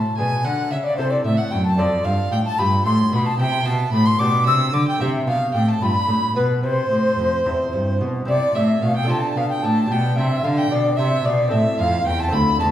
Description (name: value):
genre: classical, baroque-style sonata movement with continuo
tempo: 74 BPM (dotted quarters)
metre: 6/8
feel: straight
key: C major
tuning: A4 = 440 Hz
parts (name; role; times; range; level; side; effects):
- baroque flute; melody; 0.0-12.7 s; B4 to E6; -22 LUFS; left 3 dB; none
- warm violin; second line; 0.0-12.7 s; B4 to E6; -25 LUFS; right 4 dB; none
- lute; accompaniment; 0.0-12.7 s; D2 to C5; -26 LUFS; equal; none
- warm cello; bass; 0.2-12.7 s; D2 to D3; -21 LUFS; right 1 dB; none
room: wet recital hall reverb, RT60 1.4 s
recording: heard from further back in the room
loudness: -17 LUFS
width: side -11 dB against mid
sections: 0.0-8.3 A section; 8.3-12.7 B section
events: none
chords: 0.2 G#dim/B; 1.0 Am; 1.8 F69; 2.6 G7; 3.4 C; 4.2 G/B; 5.0 C5; 5.8 G7; 6.6 C; 9.1 Dm7; 9.9 G/B; 11.5 Am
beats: | 0.19 0.99 | 1.79 2.60 | 3.40 4.20 | 5.00 5.81 | 6.63 7.46 | 8.28 9.10 | 9.90 10.71 | 11.52 12.33